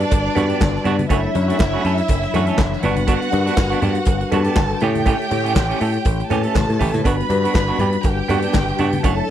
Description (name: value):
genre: disco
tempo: 121 BPM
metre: 4/4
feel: swing 56% on 16ths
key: unclear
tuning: A4 = 440 Hz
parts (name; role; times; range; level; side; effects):
- warm studio violin section; second line; 0.0-9.3 s; D4 to B5; -23 LUFS; right 3 dB; none
- semi-hollow electric guitar; accompaniment; 0.0-9.2 s; A3 to A4; -23 LUFS; right 7 dB; tremolo
- tine electric piano; accompaniment; 0.0-9.3 s; E3 to C#5; -24 LUFS; left 8 dB; fast stereo tremolo
- picked electric bass; bass; 0.0-9.2 s; F#1 to A2; -21 LUFS; equal; none
- warm soul drum kit; drums; 0.0-9.2 s; handclaps, hi-hat, kick drum, snare drum; -20 LUFS; equal; none
- cowbell; percussion; 0.1-9.2 s; none; -32 LUFS; right 11 dB; none
- congas; percussion; 0.4-9.0 s; none; -28 LUFS; left 3 dB; none
room: little or no reverb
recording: none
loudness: -16 LUFS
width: side -11 dB against mid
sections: 0.0-9.3 A section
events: none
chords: 0.0 Gmaj7; 1.1 Dmaj7/F#; 2.8 Gmaj7; 4.8 A7; 7.0 Gmaj7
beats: 0.12 0.61 | 1.10 1.59 2.09 2.58 | 3.08 3.57 4.07 4.56 | 5.06 5.56 6.05 6.55 | 7.05 7.55 8.04 8.54 | 9.04